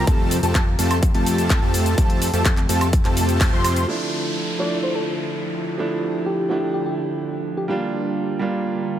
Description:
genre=EDM, festival progressive house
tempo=126 BPM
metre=4/4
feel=straight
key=D minor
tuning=A4 = 440 Hz
part: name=lush unison pad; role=sustained chords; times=0.0-9.0 s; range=C3 to E5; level=-29 LUFS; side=left 1 dB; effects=chorus, sidechain pumping
part: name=wide unison lead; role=arpeggios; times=0.0-3.9 s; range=A5 to C6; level=-28 LUFS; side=equal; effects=ensemble chorus, cassette tape, sidechain pumping, dub echo
part: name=dense compressed supersaw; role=riff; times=0.0-3.9 s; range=A3 to C5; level=-24 LUFS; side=equal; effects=sidechain pumping, dub echo
part: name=fat analog bass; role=bass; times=0.0-3.9 s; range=F2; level=-23 LUFS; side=equal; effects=sidechain pumping
part: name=big-room dance drum kit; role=drums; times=0.1-9.0 s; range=handclaps, hi-hat, shaker, woodblock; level=-26 LUFS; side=equal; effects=overdrive, low-pass filter on hats, low-pass filter on perc, low-pass filter on snare
part: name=electronic kick drum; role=drums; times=0.1-3.5 s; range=none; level=-18 LUFS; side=equal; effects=overdrive
part: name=clear grand piano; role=accompaniment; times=3.9-9.0 s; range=F3 to F4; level=-24 LUFS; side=right 3 dB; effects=sidechain pumping
part: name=downlifter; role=sound effects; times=3.9-7.7 s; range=none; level=-32 LUFS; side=equal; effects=none
part: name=soft struck synth lead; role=melody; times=4.6-7.8 s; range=G4 to D5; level=-28 LUFS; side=left 1 dB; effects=chorus, dub echo
room=light reverb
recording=none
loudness=-18 LUFS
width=side -10 dB against mid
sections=0.0-3.9 A section; 3.9-9.0 B section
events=drop 0.0-3.9; band accent 3.4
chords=0.1 Fadd9; 3.9 Dmadd9; 7.7 Gm7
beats=| 0.07 0.55 1.03 1.50 | 1.98 2.46 2.93 3.41 | 3.88 4.36 4.84 5.31 | 5.79 6.26 6.74 7.22 | 7.69 8.17 8.64

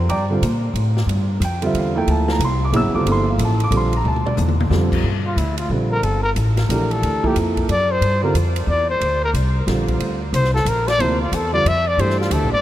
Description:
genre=modal jazz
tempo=181 BPM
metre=3/4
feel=swing 63% on 8ths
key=G dorian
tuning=A4 = 437 Hz
part: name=dark grand piano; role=accompaniment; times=0.0-12.5 s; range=C3 to E6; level=-22 LUFS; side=right 2 dB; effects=none
part: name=upright bass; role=bass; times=0.0-12.6 s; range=F1 to Bb2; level=-20 LUFS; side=equal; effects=none
part: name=swinging big-band drum kit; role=drums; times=0.1-12.4 s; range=crash cymbal, hi-hat, kick drum, ride cymbal, snare drum, toms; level=-28 LUFS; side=equal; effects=none
part: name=breathy trumpet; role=melody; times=5.3-12.6 s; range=E4 to E5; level=-20 LUFS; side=left 1 dB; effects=tape echo
room=moderate huge ambient reverb, RT60 6.9 s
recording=dreamy mix soaked in reverb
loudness=-16 LUFS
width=side -13 dB against mid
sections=0.0-5.0 A section; 5.0-12.6 A section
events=drum fill 4.0-4.7; trumpet solo 5.0-12.6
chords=0.0 Gm7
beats=| 0.09 0.42 0.75 | 1.08 1.41 1.74 | 2.07 2.40 2.73 | 3.06 3.39 3.72 | 4.05 4.38 4.71 | 5.04 5.37 5.70 | 6.03 6.36 6.70 | 7.03 7.36 7.69 | 8.02 8.35 8.68 | 9.01 9.35 9.68 | 10.01 10.34 10.67 | 11.00 11.33 11.66 | 11.99 12.32

